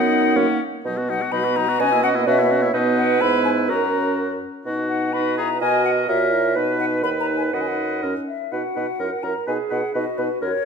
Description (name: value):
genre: quick classical-period movement for wind quintet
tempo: 126 BPM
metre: 2/4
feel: straight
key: B major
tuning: A4 = 443 Hz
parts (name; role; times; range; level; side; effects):
- hollow concert flute; melody; 0.0-10.7 s; B4 to B5; -24 LUFS; left 8 dB; none
- warm oboe; second line; 0.0-10.5 s; C#4 to B4; -26 LUFS; left 3 dB; none
- mellow French horn; accompaniment; 0.0-10.5 s; F#3 to F#4; -27 LUFS; left 1 dB; none
- warm clarinet; accompaniment; 0.0-10.7 s; A#3 to D#5; -25 LUFS; right 9 dB; none
- mellow bassoon; bass; 0.0-10.5 s; D#2 to B2; -24 LUFS; right 2 dB; none
room: wet recital hall reverb, RT60 1.6 s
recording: none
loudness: -18 LUFS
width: side -6 dB against mid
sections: 0.9-8.5 A section; 8.5-10.7 B section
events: none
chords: 0.4 F#; 0.9 B; 1.8 F#7/B; 2.7 B; 3.2 E/G#; 3.7 F#; 4.7 B; 5.6 F#7/B; 6.6 B; 7.0 B/D#; 7.5 B/F#; 8.0 F#; 8.5 B; 9.0 F#7; 9.5 B